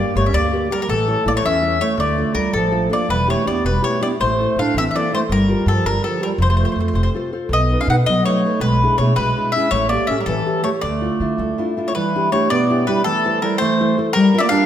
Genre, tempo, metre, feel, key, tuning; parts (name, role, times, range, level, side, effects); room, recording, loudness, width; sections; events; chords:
italian folk, Italian serenade; 109 BPM (dotted quarters); 6/8; straight; A4 = 440 Hz
mandolin; melody; 0.0-14.7 s; A4 to F#5; -20 LUFS; left 2 dB
warm clarinet; second line; 0.0-14.7 s; E3 to D#4; -23 LUFS; right 5 dB
nylon-string guitar; accompaniment; 0.0-14.7 s; B2 to D5; -22 LUFS; left 2 dB
upright bass; bass; 0.2-11.5 s; E1 to D3; -21 LUFS; equal
wet recital hall reverb, RT60 1.6 s; -16 LUFS; side -10 dB against mid
0.0-3.1 A section; 3.1-11.9 B section; 11.9-14.7 B section
0.0 Gm; 0.9 A; 2.0 Dm; 3.1 Em7; 4.2 Am; 5.3 Gm7; 6.4 F; 7.5 B7; 8.6 E7/B; 9.7 A7; 10.8 Dmadd9; 11.9 Em7; 13.0 Am; 14.1 Gm7